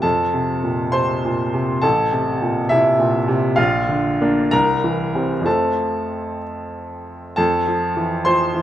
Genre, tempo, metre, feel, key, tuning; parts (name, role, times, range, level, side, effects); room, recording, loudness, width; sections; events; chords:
classical, virtuoso piano study; 61-70 BPM (dotted quarters); 6/8; rubato; F major; A4 = 440 Hz
clear baby grand piano; solo; 0.0-8.6 s; A1 to C6; -17 LUFS; equal
moderate recital hall reverb, RT60 1.5 s; -16 LUFS; side -12 dB against mid
0.0-7.4 A section; 7.4-8.6 A section
0.0 F; 1.8 Am; 3.6 Bb; 4.5 C7; 5.5 F